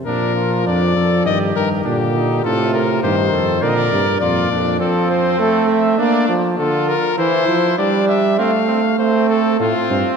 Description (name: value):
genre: classical, imitative canzona for brass ensemble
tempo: 101 BPM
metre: 4/4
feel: straight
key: Bb major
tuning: A4 = 442 Hz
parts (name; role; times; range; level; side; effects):
- clear trombone; accompaniment; 0.0-10.2 s; Bb2 to C4; -18 LUFS; right 2 dB; none
- clear cornet; melody; 0.1-10.2 s; F4 to F5; -20 LUFS; left 6 dB; none
- clear trumpet; second line; 0.1-10.2 s; C4 to Bb4; -22 LUFS; right 5 dB; none
- warm bass trombone; bass; 0.1-4.8, 9.6-10.0 s; F2 to Bb2; -21 LUFS; equal; none
room: wet church reverb, RT60 2.6 s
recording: dark, warm production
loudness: -14 LUFS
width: side -6 dB against mid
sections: 0.1-9.6 A section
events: none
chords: 0.1 Bb; 1.3 Eb/G; 2.4 F/A; 3.6 Bb; 4.8 F; 6.0 Bb; 7.2 C/E; 8.4 F/A; 9.6 F